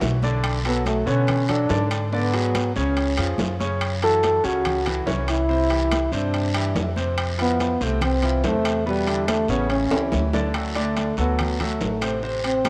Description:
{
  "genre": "Afro-Cuban jazz",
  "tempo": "142 BPM",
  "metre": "4/4",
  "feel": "straight",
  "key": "D major",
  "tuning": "A4 = 440 Hz",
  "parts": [
    { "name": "breathy trombone", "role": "melody", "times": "0.0-12.7 s", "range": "G3 to A4", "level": "-26 LUFS", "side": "equal", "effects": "none" },
    { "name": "clear baby grand piano", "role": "accompaniment", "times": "0.0-12.7 s", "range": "B2 to D5", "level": "-30 LUFS", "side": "equal", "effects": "none" },
    { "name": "upright bass", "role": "bass", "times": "0.0-12.7 s", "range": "A1 to B2", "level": "-28 LUFS", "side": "equal", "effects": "none" },
    { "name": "congas", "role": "percussion", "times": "0.0-12.7 s", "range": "none", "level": "-36 LUFS", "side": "equal", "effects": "none" },
    { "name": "guiro", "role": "percussion", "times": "0.0-12.7 s", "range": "none", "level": "-38 LUFS", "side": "equal", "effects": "none" },
    { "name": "timbales", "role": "percussion", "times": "0.0-12.7 s", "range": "none", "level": "-32 LUFS", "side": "equal", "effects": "none" }
  ],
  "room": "moderate plate reverb, RT60 2.9 s",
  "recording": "none",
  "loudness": "-22 LUFS",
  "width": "mono",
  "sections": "0.0-10.5 A section; 10.5-12.7 B section",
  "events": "drum fill 9.9-10.5; trombone solo 10.5-12.7",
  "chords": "0.4 Bm9; 2.1 G#m7b5; 3.0 C#; 3.8 F#m7; 5.5 Cadd9; 7.2 Fmaj7; 8.9 Em7; 9.7 A7; 10.5 D6",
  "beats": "0.01 | 0.43 0.85 1.28 1.70 | 2.12 2.54 2.96 3.38 | 3.81 4.23 4.65 5.07 | 5.49 5.91 6.33 6.75 | 7.18 7.60 8.02 8.44 | 8.86 9.28 9.70 10.12 | 10.54 10.97 11.39 11.81 | 12.23 12.65"
}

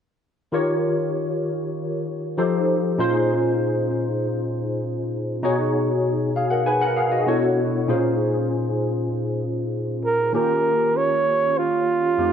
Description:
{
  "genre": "pop",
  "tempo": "98 BPM",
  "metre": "4/4",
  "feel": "straight",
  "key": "unclear",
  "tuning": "A4 = 442 Hz",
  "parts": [
    { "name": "barky tine electric piano", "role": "accompaniment", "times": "0.5-12.3 s", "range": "F2 to G#5", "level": "-21 LUFS", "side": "left 1 dB", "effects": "overdrive, ensemble chorus" },
    { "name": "breathy flugelhorn", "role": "melody", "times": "10.1-12.3 s", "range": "F4 to Db5", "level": "-19 LUFS", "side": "right 3 dB", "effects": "none" }
  ],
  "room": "moderate plate reverb, RT60 2.6 s",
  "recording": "none",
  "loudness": "-20 LUFS",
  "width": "side -8 dB against mid",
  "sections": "0.5-10.3 A section; 10.3-12.3 B section",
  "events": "none",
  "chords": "0.5 Eb9; 2.4 F7; 3.0 Bbm11; 5.4 B69; 7.3 Bm11; 7.9 Bbm11; 10.3 Eb9",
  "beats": "| 0.53 1.15 1.76 2.37 | 2.98 3.60 4.21 4.82 | 5.43 6.04 6.66 7.27 | 7.88 8.50 9.11 9.72 | 10.34 10.95 11.56 12.18"
}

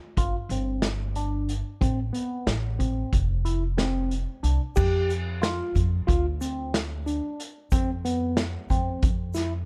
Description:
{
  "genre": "progressive instrumental, band music in an uneven meter",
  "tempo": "183 BPM (eighths)",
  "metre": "9/8",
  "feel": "straight",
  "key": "F lydian",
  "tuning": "A4 = 441 Hz",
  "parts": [
    { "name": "overdriven tine electric piano", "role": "arpeggios", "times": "0.2-9.5 s", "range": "B3 to G4", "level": "-32 LUFS", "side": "equal", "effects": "phaser" },
    { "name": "upright bass", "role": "bass", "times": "0.2-9.7 s", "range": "F1 to F2", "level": "-30 LUFS", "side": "equal", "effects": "none" },
    { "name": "vintage drum kit", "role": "drums", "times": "0.2-9.5 s", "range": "crash cymbal, hi-hat, kick drum, snare drum", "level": "-29 LUFS", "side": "equal", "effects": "none" },
    { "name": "egg shaker", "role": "percussion", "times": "4.8-9.7 s", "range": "none", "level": "-49 LUFS", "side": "equal", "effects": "none" }
  ],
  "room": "small room ambience",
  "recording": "dark, warm production",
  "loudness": "-26 LUFS",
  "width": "mono",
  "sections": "0.0-4.8 A section; 4.8-9.7 B section",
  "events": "none",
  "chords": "0.2 Gsus4; 1.8 Am; 3.1 F5; 4.8 N.C.; 7.7 F5",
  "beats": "0.17 0.50 0.83 1.16 1.49 | 1.81 2.14 2.47 2.80 3.12 3.45 3.78 4.11 4.44 | 4.76 5.09 5.42 5.75 6.08 6.40 6.73 7.06 7.39 | 7.71 8.04 8.37 8.70 9.03 9.35"
}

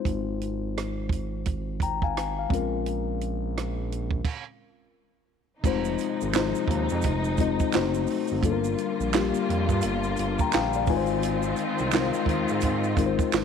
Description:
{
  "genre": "R&B, neo-soul",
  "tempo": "86 BPM",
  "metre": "4/4",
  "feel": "swing 61% on 16ths",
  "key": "unclear",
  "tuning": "A4 = 440 Hz",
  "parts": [
    { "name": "mellow tine electric piano", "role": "accompaniment", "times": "0.0-13.4 s", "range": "G3 to Bb5", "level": "-27 LUFS", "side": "left 9 dB", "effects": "medium stereo tremolo" },
    { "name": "smooth synth bass", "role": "bass", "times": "0.1-13.4 s", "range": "F1 to Ab2", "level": "-30 LUFS", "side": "right 2 dB", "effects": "none" },
    { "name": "compact cocktail drum kit", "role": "drums", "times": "0.1-13.4 s", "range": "crash cymbal, handclaps, hi-hat, kick drum, rim click, snare drum", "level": "-28 LUFS", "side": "right 5 dB", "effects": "none" },
    { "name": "warm studio string section", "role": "sustained chords", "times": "5.6-13.4 s", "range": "C3 to F4", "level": "-31 LUFS", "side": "equal", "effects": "none" },
    { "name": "egg shaker and finger snaps", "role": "percussion", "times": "5.7-13.4 s", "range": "none", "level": "-38 LUFS", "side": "right 15 dB", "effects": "none" }
  ],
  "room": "light reverb, studio reverb",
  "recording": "1960s-style stereo with parts hard left and right",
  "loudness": "-24 LUFS",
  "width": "side -7 dB against mid",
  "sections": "0.0-5.6 A section; 5.6-13.4 B section",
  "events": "stop 4.2-5.6; tine electric piano fill 10.2-11.2",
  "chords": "0.0 Ab6; 2.5 Bbm9; 4.9 N.C.; 5.6 Fm7; 7.7 F#dim7; 8.4 Gm7; 10.9 Ab6",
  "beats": "| 0.06 0.76 1.46 2.15 | 2.85 3.55 4.25 4.95 | 5.64 6.34 7.04 7.74 | 8.43 9.13 9.83 10.53 | 11.22 11.92 12.62 13.32"
}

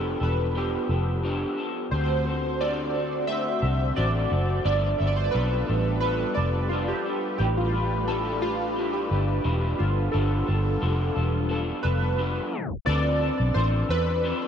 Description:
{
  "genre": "indie pop",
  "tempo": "88 BPM",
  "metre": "4/4",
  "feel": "swing 55% on 16ths",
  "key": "D dorian",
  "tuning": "A4 = 441 Hz",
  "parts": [
    { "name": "warm analog keys", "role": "melody", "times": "0.0-14.5 s", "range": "F4 to E5", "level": "-28 LUFS", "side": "right 1 dB", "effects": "phaser, analog chorus, ping-pong delay" },
    { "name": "electric guitar through a small old amp", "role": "accompaniment", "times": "0.0-14.5 s", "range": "G2 to B4", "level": "-30 LUFS", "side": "left 2 dB", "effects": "lush chorus, warbly pitch drift" },
    { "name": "vintage muted fingered electric bass", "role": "bass", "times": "0.0-14.3 s", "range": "E1 to E2", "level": "-26 LUFS", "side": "equal", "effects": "none" },
    { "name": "phased analog pad", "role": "sustained chords", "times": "2.5-12.8 s", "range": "D3 to D5", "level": "-34 LUFS", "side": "right 1 dB", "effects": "phaser, chorus" }
  ],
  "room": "wet huge ambient reverb, RT60 8.9 s",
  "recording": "dreamy mix soaked in reverb, cassette tape, tape stop",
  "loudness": "-23 LUFS",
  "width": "side -8 dB against mid",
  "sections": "0.0-12.9 A section; 12.9-14.5 B section",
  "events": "tape stop 12.5-12.9",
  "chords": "0.0 G9; 1.9 D7; 4.7 G9; 7.4 A9sus4; 9.8 G9; 12.9 Dm7",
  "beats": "0.55 1.24 | 1.92 2.60 3.29 3.97 | 4.66 5.34 6.03 6.71 | 7.39 8.08 8.76 9.45 | 10.13 10.81 11.50 12.18 | 12.86 13.55 14.23"
}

